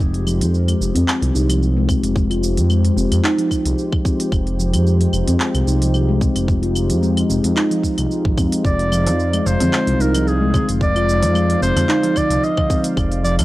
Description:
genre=organic downtempo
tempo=111 BPM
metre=4/4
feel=swing 54% on 16ths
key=F dorian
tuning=A4 = 439 Hz
part: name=warm analog pad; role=sustained chords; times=0.0-13.4 s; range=Ab3 to F5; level=-26 LUFS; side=left 1 dB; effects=chorus, sidechain pumping
part: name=smooth gliding synth bass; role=bass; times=0.0-13.4 s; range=F1 to F2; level=-18 LUFS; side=equal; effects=sidechain pumping
part: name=organic electronic drum kit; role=drums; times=0.0-13.4 s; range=claves, handclaps, hi-hat, shaker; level=-25 LUFS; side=equal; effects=small room ambience
part: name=steel tongue drum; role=arpeggios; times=0.3-13.4 s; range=F3 to F4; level=-20 LUFS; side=equal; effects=analog delay
part: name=electronic kick drum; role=drums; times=1.9-13.1 s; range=none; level=-19 LUFS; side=equal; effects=small room ambience
part: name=warm clarinet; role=melody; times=8.7-13.4 s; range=Ab4 to Eb5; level=-22 LUFS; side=equal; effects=vintage 12-bit sampler grit, analog delay
part: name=darbuka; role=percussion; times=9.1-13.4 s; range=none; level=-29 LUFS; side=left 2 dB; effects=none
room=small room ambience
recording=dry, gritty hardware recording, cassette tape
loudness=-15 LUFS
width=side -17 dB against mid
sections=0.0-13.4 A section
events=none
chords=0.0 Fm9

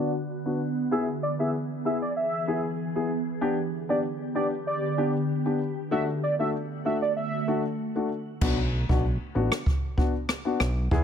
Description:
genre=dancehall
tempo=96 BPM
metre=4/4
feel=straight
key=B minor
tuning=A4 = 441 Hz
part: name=warm velvety synth lead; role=melody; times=0.0-7.6 s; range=D5 to E5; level=-30 LUFS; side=right 2 dB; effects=chorus, low-pass filter
part: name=dark grand piano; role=accompaniment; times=0.0-11.0 s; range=A3 to G#4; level=-29 LUFS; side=left 3 dB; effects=low-pass filter
part: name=glassy FM pad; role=sustained chords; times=0.0-8.4 s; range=D3 to G#4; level=-31 LUFS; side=right 1 dB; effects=ensemble chorus, built-in reverb, phaser, sidechain pumping, low-pass filter
part: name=fat analog bass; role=bass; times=8.4-11.0 s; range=A1 to E2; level=-26 LUFS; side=equal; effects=none
part: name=open jazz drum kit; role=drums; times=8.4-11.0 s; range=crash cymbal, kick drum, rim click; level=-26 LUFS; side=equal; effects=none
room=light reverb, studio ambience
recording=none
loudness=-25 LUFS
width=side -8 dB against mid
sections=0.0-8.4 A section; 8.4-11.0 B section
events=filter sweep 0.0-8.4; hi-hats muted 8.4-11.0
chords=0.0 Bm; 0.9 E; 3.4 G; 5.9 D; 8.4 Bm

